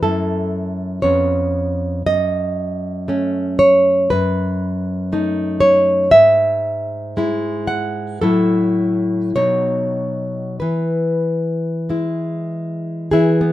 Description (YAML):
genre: romantic piece for solo classical guitar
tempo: 46-61 BPM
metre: 2/4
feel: rubato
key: E major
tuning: A4 = 439 Hz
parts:
  - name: nylon-string guitar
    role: solo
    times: 0.0-13.5 s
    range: E#2 to F#5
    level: -15 LUFS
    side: equal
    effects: none
room: moderate studio reverb, RT60 0.6 s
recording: minimal, uncompressed stereo recording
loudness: -15 LUFS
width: side -14 dB against mid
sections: 0.0-13.2 A section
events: none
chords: 0.0 F#m7; 1.0 C#7/E#; 2.1 F#m; 4.1 B7/F#; 6.1 E/G#; 8.2 F#m7/A; 9.4 B; 10.6 E